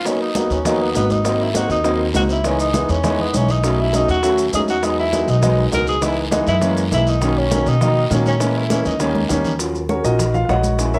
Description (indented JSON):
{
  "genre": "Afro-Cuban jazz",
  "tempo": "201 BPM",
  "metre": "4/4",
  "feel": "straight",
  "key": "G# minor",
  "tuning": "A4 = 439 Hz",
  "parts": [
    { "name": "mellow tenor saxophone", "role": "melody", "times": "0.0-9.3 s", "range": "B3 to A#4", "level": "-24 LUFS", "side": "equal", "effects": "none" },
    { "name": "warm baby grand piano", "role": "accompaniment", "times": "0.0-11.0 s", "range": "D#3 to Gb5", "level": "-22 LUFS", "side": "equal", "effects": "cassette tape" },
    { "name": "bongos", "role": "percussion", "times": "0.1-11.0 s", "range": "none", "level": "-32 LUFS", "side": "equal", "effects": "none" },
    { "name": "congas", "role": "percussion", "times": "0.1-11.0 s", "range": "none", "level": "-29 LUFS", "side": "equal", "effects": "none" },
    { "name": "guiro", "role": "percussion", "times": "0.1-9.6 s", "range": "none", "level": "-35 LUFS", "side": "equal", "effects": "none" },
    { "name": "maracas", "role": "percussion", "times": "0.1-11.0 s", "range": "none", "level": "-33 LUFS", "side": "equal", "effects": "none" },
    { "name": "upright bass", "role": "bass", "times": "0.5-11.0 s", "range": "G#1 to B2", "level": "-23 LUFS", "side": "equal", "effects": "none" }
  ],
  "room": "moderate studio reverb, RT60 0.6 s",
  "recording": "home recording on cassette",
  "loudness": "-18 LUFS",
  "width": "mono",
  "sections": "0.1-9.6 A section; 9.6-11.0 B section",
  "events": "drum fill 9.2-9.6; grand piano solo 9.6-11.0",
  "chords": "0.1 G#m7; 1.3 G#7; 2.4 C#m7; 3.6 B7; 4.8 Emaj9; 6.0 C#m7; 6.6 F#7; 7.2 Bmaj9; 8.4 A#m7b5; 9.0 D#7; 9.6 Ebm7"
}